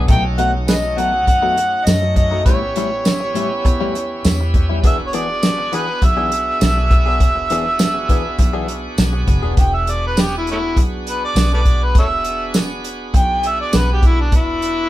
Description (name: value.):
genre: straight-eighth soul blues.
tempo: 101 BPM.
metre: 4/4.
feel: straight.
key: E mixolydian.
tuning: A4 = 439 Hz.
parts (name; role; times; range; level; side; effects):
overdriven tonewheel organ; accompaniment; 0.0-14.9 s; A3 to B4; -27 LUFS; right 2 dB; slow rotary speaker.
direct-recorded clean electric guitar; stabs; 0.0-9.6 s; A2 to G#4; -25 LUFS; left 5 dB; spring reverb.
vintage muted fingered electric bass; bass; 0.0-14.9 s; E1 to F#2; -20 LUFS; equal; none.
mellow harmonica; melody; 0.1-14.9 s; A3 to G5; -19 LUFS; equal; overdrive.
warm soul drum kit; drums; 0.1-14.8 s; hi-hat, kick drum, snare drum, tambourine; -16 LUFS; equal; none.
room: moderate small room reverb, RT60 0.5 s.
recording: band playing live in one room.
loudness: -14 LUFS.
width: side -15 dB against mid.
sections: 0.0-9.6 A section; 9.6-14.9 B section.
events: harmonica solo 9.6-14.9.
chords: 0.1 B7; 2.5 A7; 4.8 E7.